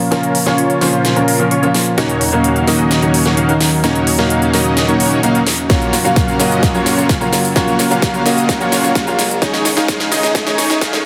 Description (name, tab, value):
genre	EDM, festival progressive house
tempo	129 BPM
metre	4/4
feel	straight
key	unclear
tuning	A4 = 444 Hz
part	clear grand piano	accompaniment	0.0-11.1 s	Eb3 to F5	-20 LUFS	equal	sidechain pumping, tape echo
part	lush unison pad	sustained chords	0.0-11.1 s	Db2 to F5	-25 LUFS	equal	chorus, phaser, sidechain pumping
part	riser	sound effects	5.5-11.1 s	none	-32 LUFS	equal	none
part	dense compressed supersaw	riff	0.1-11.0 s	Bb3 to F5	-18 LUFS	equal	sidechain pumping, low-pass filter, tape echo
part	big-room dance drum kit	drums	0.1-11.0 s	hi-hat, shaker, snare drum	-21 LUFS	equal	high-pass filter on hats, studio reverb, high-pass filter on snare, high-pass filter on perc
part	electronic kick drum	drums	5.7-10.9 s	none	-20 LUFS	equal	studio reverb
room	moderate huge ambient reverb, RT60 4.8 s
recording	dense, heavily limited modern master, high-pass filter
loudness	-14 LUFS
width	mono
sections	0.0-11.1 A section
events	build-up 0.0-11.1; drum fill 0.0-11.1; filter sweep on supersaw synth 0.0-11.1; filter sweep on analog synth pad 0.0-11.1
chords	0.0 Bbm; 2.0 Ebm7; 5.7 Gbmaj7; 9.4 Dbsus2